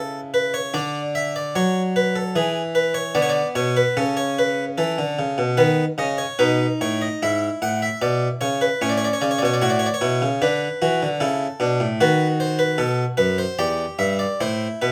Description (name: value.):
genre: classical, baroque-style 3-part fugue for harpsichord.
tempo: 75 BPM.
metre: 4/4.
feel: straight.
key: unclear.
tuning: A4 = 440 Hz.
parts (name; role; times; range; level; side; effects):
harpsichord; solo; 0.0-14.9 s; E2 to F#5; -21 LUFS; equal; none.
room: moderate studio reverb, RT60 0.7 s.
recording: none.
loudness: -21 LUFS.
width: mono.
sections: 0.0-5.6 A section; 5.6-14.9 B section.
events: none.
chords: 0.0 A/C#; 0.7 D; 2.4 E7; 4.0 A/C#; 5.6 B7; 7.2 E/G#; 8.8 A; 12.0 B7/D#; 13.6 Em.